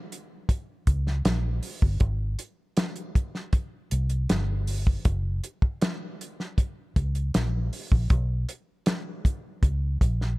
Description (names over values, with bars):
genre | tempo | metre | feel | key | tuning
lush 1970s-style soul | 79 BPM | 4/4 | straight | unclear | A4 = 440 Hz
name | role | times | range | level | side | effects
warm soul drum kit | drums | 0.1-10.3 s | hi-hat, kick drum, snare drum | -25 LUFS | equal | none
vintage muted fingered electric bass | bass | 0.9-10.3 s | Gb1 to Db2 | -26 LUFS | equal | none
room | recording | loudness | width
little or no reverb | none | -24 LUFS | side -22 dB against mid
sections
0.0-10.4 A section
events
none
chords
none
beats
0.49 1.25 | 2.01 2.77 3.53 4.29 | 5.06 5.82 6.58 7.34 | 8.10 8.87 9.63